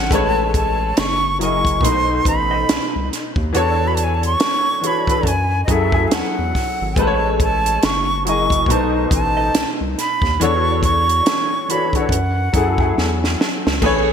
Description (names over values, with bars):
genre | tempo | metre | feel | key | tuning
R&B, neo-soul | 70 BPM | 4/4 | swing 60% on 16ths | F# minor | A4 = 440 Hz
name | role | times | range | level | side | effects
breathy bright jazz flute | melody | 0.0-13.4 s | D#5 to C#6 | -20 LUFS | right 2 dB | none
clear grand piano | accompaniment | 0.0-14.1 s | B2 to D#5 | -20 LUFS | left 2 dB | ensemble chorus
round analog bass | bass | 0.0-14.1 s | F#1 to F#2 | -22 LUFS | equal | none
compact cocktail drum kit | drums | 0.1-14.1 s | crash cymbal, hi-hat, kick drum, snare drum | -20 LUFS | right 1 dB | gated reverb
clean electric guitar | second line | 2.5-12.9 s | A3 to D#5 | -31 LUFS | right 2 dB | none
room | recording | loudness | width
moderate plate reverb, RT60 2.4 s | bright 1980s-style digital production | -15 LUFS | side -7 dB against mid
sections
0.1-13.8 A section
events
drum fill 13.0-13.8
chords
0.1 Amaj9; 1.0 F#13; 1.8 B7b9; 3.5 E13sus4; 5.2 F#m9; 7.0 Amaj9; 7.8 F#13; 8.7 B7b9; 10.4 E13sus4; 12.1 F#m9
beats
| 0.11 0.96 1.82 2.68 | 3.54 4.39 5.25 6.11 | 6.96 7.82 8.68 9.54 | 10.39 11.25 12.11 12.96 | 13.82